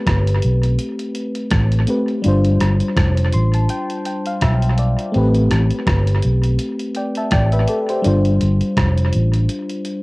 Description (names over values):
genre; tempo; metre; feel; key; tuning
lovers rock reggae; 83 BPM; 4/4; swing 56% on 16ths; A minor; A4 = 438 Hz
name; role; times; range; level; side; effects
FM electric piano; accompaniment; 0.0-10.0 s; G3 to C6; -20 LUFS; left 1 dB; chorus, analog delay
vintage muted fingered electric bass; bass; 0.1-9.5 s; F1 to B1; -16 LUFS; equal; none
detuned 8-bit digital drum machine; drums; 0.1-10.0 s; hi-hat, kick drum, rim click; -22 LUFS; equal; analog delay
room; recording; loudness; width
light reverb; home recording on cassette; -15 LUFS; side -23 dB against mid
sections
0.0-10.0 A section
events
FM electric piano fill 3.0-5.1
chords
0.0 Am9; 2.2 G7sus4; 5.1 Am9; 8.0 G7sus4